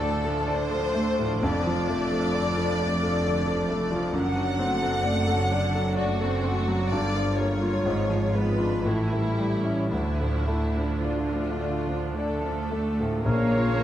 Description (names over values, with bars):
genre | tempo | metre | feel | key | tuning
classical, romantic movement for piano and orchestra | 53-68 BPM | 3/4 | rubato | D minor | A4 = 440 Hz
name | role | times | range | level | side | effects
clear concert grand piano | melody | 0.0-13.8 s | Bb1 to D5 | -27 LUFS | left 1 dB | none
rich chamber violin section | second line | 0.0-13.8 s | E4 to F#5 | -30 LUFS | left 2 dB | none
rich chamber viola section | accompaniment | 0.0-13.8 s | D3 to Db5 | -32 LUFS | right 2 dB | none
rich chamber double bass section | bass | 0.0-13.8 s | F1 to D2 | -32 LUFS | right 2 dB | none
rich studio cello section | bass | 0.0-13.8 s | D2 to Bb3 | -33 LUFS | right 3 dB | none
dark French horn section | sustained chords | 12.1-13.8 s | A3 to Bb3 | -30 LUFS | left 3 dB | none
dark studio violin section | melody | 13.2-13.8 s | Db5 | -36 LUFS | left 3 dB | none
clear clarinet | second line | 13.2-13.8 s | Bb4 | -35 LUFS | equal | none
large flute ensemble | second line | 13.2-13.8 s | Bb5 | -38 LUFS | right 2 dB | none
mellow bassoon | accompaniment | 13.2-13.8 s | Db3 | -33 LUFS | right 3 dB | none
warm oboe | second line | 13.3-13.8 s | F5 | -33 LUFS | equal | none
room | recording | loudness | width
moderate recital hall reverb, RT60 1.4 s | dark, warm production | -23 LUFS | side -11 dB against mid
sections
0.0-13.2 A section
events
none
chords
0.0 Dm; 1.4 Dm/F; 4.1 D7/F#; 6.9 Gm7; 7.9 G#dim7; 8.9 A7; 9.9 Dm; 13.2 Bbm